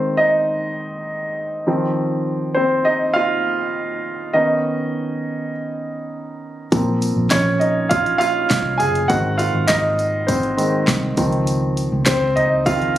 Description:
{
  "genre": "piano-driven pop",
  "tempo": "101 BPM",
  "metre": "4/4",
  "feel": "straight",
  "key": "unclear",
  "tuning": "A4 = 440 Hz",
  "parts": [
    { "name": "warm grand piano", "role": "accompaniment", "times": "0.0-13.0 s", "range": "Eb3 to Ab5", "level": "-18 LUFS", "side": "right 1 dB", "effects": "none" },
    { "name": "vintage muted fingered electric bass", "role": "bass", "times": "6.7-13.0 s", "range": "Gb1 to Db2", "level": "-23 LUFS", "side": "equal", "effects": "none" },
    { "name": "pop drum kit", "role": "drums", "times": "6.7-13.0 s", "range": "handclaps, hi-hat, kick drum, snare drum, toms", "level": "-22 LUFS", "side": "equal", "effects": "none" },
    { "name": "tambourine", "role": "percussion", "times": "6.7-12.8 s", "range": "none", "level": "-33 LUFS", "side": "left 2 dB", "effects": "none" }
  ],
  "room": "light reverb, digital ambience",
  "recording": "recorded on a phone in the room, club reverb",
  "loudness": "-17 LUFS",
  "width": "side -13 dB against mid",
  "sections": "0.0-13.0 A section",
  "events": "grand piano solo 0.0-13.0",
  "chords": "0.0 Ab; 1.7 Cmadd11/Eb; 4.3 Cbadd9; 6.7 Bbsus2; 9.1 Ab; 11.2 Dbmaj7"
}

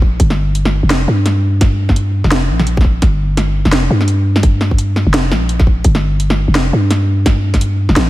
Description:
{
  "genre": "half-time drum and bass",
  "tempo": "170 BPM",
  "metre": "4/4",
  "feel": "swing 59% on 16ths, half-time",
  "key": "G minor",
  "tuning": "A4 = 440 Hz",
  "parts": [
    { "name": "growling 808-style bass", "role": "bass", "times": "0.0-8.1 s", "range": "F1 to G2", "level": "-14 LUFS", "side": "equal", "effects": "none" },
    { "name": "electronic kick drum", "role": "drums", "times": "0.0-7.6 s", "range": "none", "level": "-11 LUFS", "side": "equal", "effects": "none" },
    { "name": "drum and bass drum kit", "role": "drums", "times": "0.2-8.0 s", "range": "hi-hat, snare drum", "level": "-18 LUFS", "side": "equal", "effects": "none" }
  ],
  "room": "little or no reverb",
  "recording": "none",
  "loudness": "-11 LUFS",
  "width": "side -16 dB against mid",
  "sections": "0.0-8.1 A section",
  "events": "none",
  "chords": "none"
}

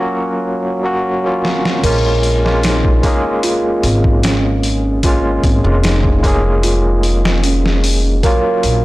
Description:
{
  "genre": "trip hop",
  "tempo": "75 BPM",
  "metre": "4/4",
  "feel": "straight",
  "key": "Bb minor",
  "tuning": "A4 = 440 Hz",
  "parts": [
    { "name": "barky tine electric piano", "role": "accompaniment", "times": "0.0-8.8 s", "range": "Gb3 to Ab4", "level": "-17 LUFS", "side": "equal", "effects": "tremolo, tape echo" },
    { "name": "celesta", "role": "arpeggios", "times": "0.0-8.8 s", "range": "Db4 to Bb4", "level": "-20 LUFS", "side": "right 3 dB", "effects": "digital delay" },
    { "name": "trip hop sampler-style drum kit", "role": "drums", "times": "1.4-8.8 s", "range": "crash cymbal, hi-hat, kick drum, snare drum", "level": "-17 LUFS", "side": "equal", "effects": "none" },
    { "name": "upright bass", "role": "bass", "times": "1.8-8.8 s", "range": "F1 to Bb1", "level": "-16 LUFS", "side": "equal", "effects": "tube saturation" }
  ],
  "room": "light reverb",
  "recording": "blown-out, overdriven recording, overdrive",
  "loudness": "-12 LUFS",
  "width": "side -18 dB against mid",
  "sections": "0.0-1.8 A section; 1.8-8.8 B section",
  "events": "break 0.0-1.8; drum fill 1.4-1.8",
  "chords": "0.0 Ebm9; 1.8 Bbm7; 8.2 Ebm9 (rootless)"
}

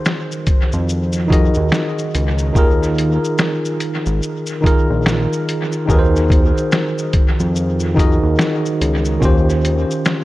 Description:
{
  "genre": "lo-fi hip hop",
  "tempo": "72 BPM",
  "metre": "4/4",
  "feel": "swing 61% on 16ths",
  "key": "unclear",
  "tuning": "A4 = 440 Hz",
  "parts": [
    { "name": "tine electric piano", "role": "accompaniment", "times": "0.0-10.2 s", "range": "Eb3 to Eb5", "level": "-18 LUFS", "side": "equal", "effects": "slow stereo tremolo, cassette tape, dub echo" },
    { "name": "lo-fi sampler-style drum kit", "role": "drums", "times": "0.1-10.2 s", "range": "finger snaps, hi-hat, kick drum, shaker, snare drum", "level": "-18 LUFS", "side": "equal", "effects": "dub echo" },
    { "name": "fat analog bass", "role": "bass", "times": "0.7-9.9 s", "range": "Ab1 to F2", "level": "-17 LUFS", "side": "equal", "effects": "none" }
  ],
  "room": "light reverb",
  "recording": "echo-heavy mix",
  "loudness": "-14 LUFS",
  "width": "side -17 dB against mid",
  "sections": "0.0-10.2 A section",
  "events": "none",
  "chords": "0.0 Ab9; 2.6 Bb7sus4; 5.9 Ab9/Eb; 9.2 Eb13"
}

